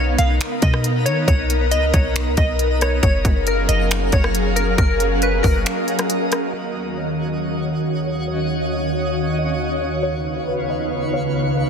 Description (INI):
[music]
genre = hip hop, atmospheric cloud-rap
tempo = 137 BPM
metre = 4/4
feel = half-time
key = Eb minor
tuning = A4 = 440 Hz
[part]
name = glassy wavetable pluck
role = melody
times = 0.0-11.7 s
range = Bb4 to F5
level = -25 LUFS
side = left 2 dB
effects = chorus, low-pass filter, ping-pong delay
[part]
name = ethereal airy pad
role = sustained chords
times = 0.0-11.7 s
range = Db2 to F5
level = -21 LUFS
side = equal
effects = ensemble chorus, built-in reverb, sidechain pumping, low-pass filter
[part]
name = clean 808-style bass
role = bass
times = 0.0-5.7 s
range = Gb1 to D#3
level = -20 LUFS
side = equal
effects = none
[part]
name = twinkling granular texture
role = texture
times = 0.0-11.7 s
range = Bb3 to F5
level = -29 LUFS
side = right 1 dB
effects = built-in reverb
[part]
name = trap drum kit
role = drums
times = 0.2-6.4 s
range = finger snaps, hi-hat, kick drum, rim click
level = -20 LUFS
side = equal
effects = soft clipping on snare
[sound]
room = digital ambience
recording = dense, heavily limited modern master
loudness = -17 LUFS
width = side -6 dB against mid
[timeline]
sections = 0.0-6.5 A section; 6.5-11.7 B section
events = break 5.7-6.5; filter sweep 6.5-11.7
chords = 0.0 Bmaj7; 3.0 Gbmaj7; 6.5 Ebm7; 10.0 Db7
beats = 0.40 0.84 | 1.28 1.72 2.16 2.59 | 3.03 3.47 3.91 4.35 | 4.78 5.22 5.66 6.10 | 6.54 6.97 7.41 7.85 | 8.29 8.73 9.16 9.60 | 10.04 10.48 10.91 11.35